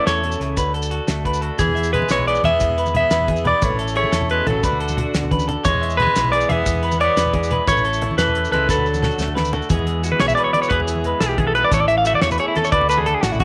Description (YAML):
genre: highlife guitar band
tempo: 118 BPM (dotted quarters)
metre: 12/8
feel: straight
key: E mixolydian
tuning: A4 = 440 Hz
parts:
  - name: clean electric guitar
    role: melody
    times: 0.0-13.4 s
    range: E4 to F5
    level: -21 LUFS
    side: equal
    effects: spring reverb
  - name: edgy tenor saxophone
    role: second line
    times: 0.0-9.3 s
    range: D3 to B3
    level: -30 LUFS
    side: equal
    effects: none
  - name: clean electric guitar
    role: accompaniment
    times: 0.0-13.4 s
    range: E2 to G#4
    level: -32 LUFS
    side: equal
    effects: none
  - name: combo organ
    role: sustained chords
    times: 0.0-13.4 s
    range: B3 to F#5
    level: -36 LUFS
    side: equal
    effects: none
  - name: electric guitar through a small old amp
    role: arpeggios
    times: 0.1-13.4 s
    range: F#4 to E5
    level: -28 LUFS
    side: equal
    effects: slapback echo
  - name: fingered electric bass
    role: bass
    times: 0.1-13.4 s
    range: A1 to E2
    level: -27 LUFS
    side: equal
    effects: none
  - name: damped 70s drum kit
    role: drums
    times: 0.1-13.4 s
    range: hi-hat, kick drum, snare drum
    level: -26 LUFS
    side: equal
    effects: none
  - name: maracas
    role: percussion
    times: 0.1-13.4 s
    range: none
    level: -36 LUFS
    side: equal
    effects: none
  - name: congas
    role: percussion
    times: 1.6-13.4 s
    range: none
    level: -29 LUFS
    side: equal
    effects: none
room: light reverb, studio reverb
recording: none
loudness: -19 LUFS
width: mono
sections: 0.0-9.7 A section; 9.7-13.4 B section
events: drum fill 8.7-9.7; clean electric guitar solo 9.7-13.4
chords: 0.0 A; 0.6 D; 1.6 E; 3.6 A; 4.6 D; 5.6 E; 7.7 A; 8.7 D; 9.7 E; 11.7 A; 12.7 D